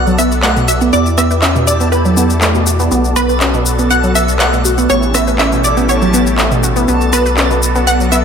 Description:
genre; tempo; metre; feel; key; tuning
progressive house; 121 BPM; 4/4; straight; B minor; A4 = 440 Hz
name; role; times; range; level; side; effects
wide unison pluck; melody; 0.0-8.2 s; B4 to F#5; -18 LUFS; right 1 dB; ping-pong delay
soft synth bell; second line; 0.0-8.2 s; B5 to F#6; -22 LUFS; left 1 dB; chorus, phaser, ping-pong delay
filtered supersaw swell; sustained chords; 0.0-8.2 s; A3 to D5; -21 LUFS; left 1 dB; none
glassy wavetable pluck; arpeggios; 0.0-8.2 s; B2 to B4; -15 LUFS; right 1 dB; chorus, ping-pong delay
saturated sub bass; bass; 0.0-8.2 s; A1 to E2; -16 LUFS; equal; none
backwards swelling texture; texture; 0.1-8.2 s; A4 to A5; -26 LUFS; equal; built-in reverb
electronic shaker, handclaps and rim click; drums; 0.1-8.2 s; none; -18 LUFS; left 2 dB; none
room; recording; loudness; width
moderate scoring stage reverb, RT60 1.9 s; none; -10 LUFS; side -7 dB against mid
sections
0.0-8.2 A section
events
filter sweep on synth arpeggio sound 0.0-8.2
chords
0.0 Bm7; 0.9 Em7; 2.9 Bm7; 4.9 A7; 6.9 Bm7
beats
0.43 | 0.93 1.43 1.92 2.42 | 2.91 3.41 3.91 4.40 | 4.90 5.39 5.89 6.38 | 6.88 7.38 7.87

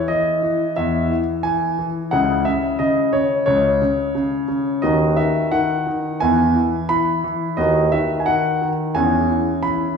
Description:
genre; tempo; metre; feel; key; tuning
classical-period piano sonatina; 88 BPM; 4/4; rubato; B major from 4.8 s; A4 = 441 Hz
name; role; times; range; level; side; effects
clear grand piano; solo; 0.0-10.0 s; C#2 to B5; -17 LUFS; equal; none
room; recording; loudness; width
wet recital hall reverb, RT60 1.6 s; recorded in a church or concert hall, studio reverb; -17 LUFS; side -6 dB against mid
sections
0.0-10.0 A section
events
none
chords
0.0 E; 2.1 C#m; 4.8 B/D#; 6.2 E; 7.6 B/D#; 9.0 C#m7/E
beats
0.08 0.76 1.45 | 2.13 2.80 3.48 4.15 | 4.83 5.52 6.20 6.89 | 7.58 8.27 8.95 9.63

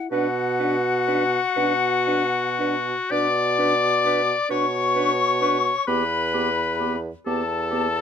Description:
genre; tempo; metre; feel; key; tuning
classical, slow romantic movement for wind quintet; 38-44 BPM (dotted quarters); 12/8; rubato; B minor; A4 = 440 Hz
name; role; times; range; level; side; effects
bright concert flute; melody; 0.0-8.0 s; F#5 to D6; -25 LUFS; left 7 dB; none
mellow French horn; accompaniment; 0.0-7.9 s; B3 to E4; -29 LUFS; left 2 dB; none
clear oboe; second line; 0.1-8.0 s; F#4 to D5; -24 LUFS; left 4 dB; none
clear clarinet; accompaniment; 0.1-7.9 s; G4 to B4; -29 LUFS; right 12 dB; none
warm bassoon; bass; 0.1-8.0 s; E2 to B2; -26 LUFS; right 3 dB; none
room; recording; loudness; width
little or no reverb; close, detailed microphones; -19 LUFS; side -7 dB against mid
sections
0.1-8.0 A section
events
none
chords
0.1 Bm; 5.9 Em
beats
| 0.11 1.56 3.11 4.50 | 5.87 7.26

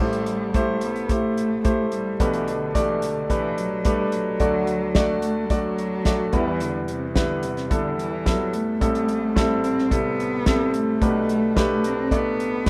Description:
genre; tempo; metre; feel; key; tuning
piano-driven pop; 109 BPM; 4/4; straight; unclear; A4 = 445 Hz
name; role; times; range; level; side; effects
warm cello; melody; 0.0-12.7 s; C3 to C4; -29 LUFS; equal; none
bright grand piano; accompaniment; 0.0-12.7 s; A1 to D5; -25 LUFS; equal; none
damped 70s drum kit; drums; 0.1-12.7 s; hi-hat, kick drum, snare drum; -26 LUFS; equal; none
room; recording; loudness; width
moderate studio reverb, RT60 0.6 s; rough home demo mix; -23 LUFS; mono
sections
0.0-12.7 A section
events
none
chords
0.0 Am7; 2.2 Gadd9/B; 4.4 D; 6.3 Em; 8.8 Am7; 11.0 Gadd9/B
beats
| 0.00 0.55 1.10 1.65 | 2.20 2.75 3.30 3.85 | 4.40 4.95 5.50 6.06 | 6.61 7.16 7.71 8.26 | 8.81 9.36 9.91 10.46 | 11.01 11.56 12.12 12.67

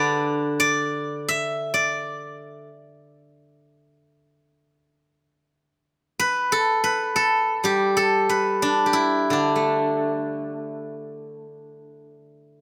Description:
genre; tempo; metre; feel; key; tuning
chinese traditional, Chinese solo plucked strings; 58-66 BPM; 4/4; rubato; D zhi mode; A4 = 440 Hz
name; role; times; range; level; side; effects
steel-string zither; solo; 0.0-12.1 s; D3 to E5; -23 LUFS; equal; none
room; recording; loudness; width
light reverb; close, detailed microphones; -22 LUFS; mono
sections
0.0-5.7 A section; 5.7-12.6 B section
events
none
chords
none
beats
0.84 | 1.75 2.67 3.65 4.67 | 5.69 6.68 7.64 8.60 | 9.55 10.49 11.43

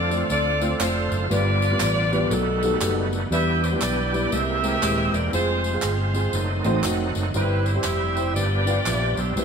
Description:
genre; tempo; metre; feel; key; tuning
uptempo gospel; 119 BPM; 4/4; swing 63% on 8ths; C major; A4 = 438 Hz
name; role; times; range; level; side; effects
clear saxophone section; melody; 0.0-9.4 s; D#4 to E5; -25 LUFS; equal; none
dark upright piano; accompaniment; 0.0-9.4 s; G2 to F5; -27 LUFS; equal; none
bright tonewheel organ; sustained chords; 0.0-9.4 s; D3 to F#5; -28 LUFS; right 2 dB; slow rotary speaker, overdrive, chorus vibrato
fingered electric bass; bass; 0.0-9.4 s; Eb1 to F2; -25 LUFS; equal; none
tambourine and handclaps; percussion; 0.1-9.4 s; none; -32 LUFS; equal; none
room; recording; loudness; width
wet stone room reverb, RT60 1.4 s; band playing live in one room; -20 LUFS; side -6 dB against mid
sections
0.0-9.4 A section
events
tonewheel organ fill 6.3-7.3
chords
0.0 Dm7; 1.3 G7; 2.3 B7b13; 3.3 Em7; 4.3 C7b13; 5.3 Fm; 6.3 F#dim7; 7.3 C/G; 8.3 G7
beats
0.30 0.80 | 1.30 1.80 2.31 2.81 | 3.31 3.82 4.32 4.83 | 5.33 5.83 6.34 6.84 | 7.34 7.85 8.35 8.85 | 9.36

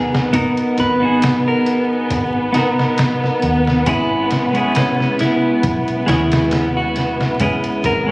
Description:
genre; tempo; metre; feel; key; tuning
trip hop; 68 BPM; 4/4; swing 54% on 16ths; G# minor; A4 = 439 Hz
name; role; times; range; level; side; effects
clean electric guitar; melody; 0.0-8.1 s; C#4 to B4; -21 LUFS; equal; dub echo
clean electric guitar; accompaniment; 0.0-8.1 s; G#3 to A#4; -18 LUFS; equal; tremolo
muted studio string section; sustained chords; 0.0-8.1 s; B3; -20 LUFS; equal; none
deep dub fingered electric bass; bass; 0.0-8.1 s; G#1 to D#2; -25 LUFS; equal; none
trip hop sampler-style drum kit; drums; 0.1-8.1 s; hi-hat, kick drum, snare drum; -20 LUFS; equal; none
room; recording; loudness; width
light reverb, digital ambience; recorded on a phone in the room, studio reverb, vinyl crackle; -14 LUFS; side -24 dB against mid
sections
0.0-8.1 A section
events
none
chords
0.0 G#m9; 3.9 C#m/G#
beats
| 0.34 1.22 2.11 2.99 | 3.87 4.75 5.64 6.52 | 7.40

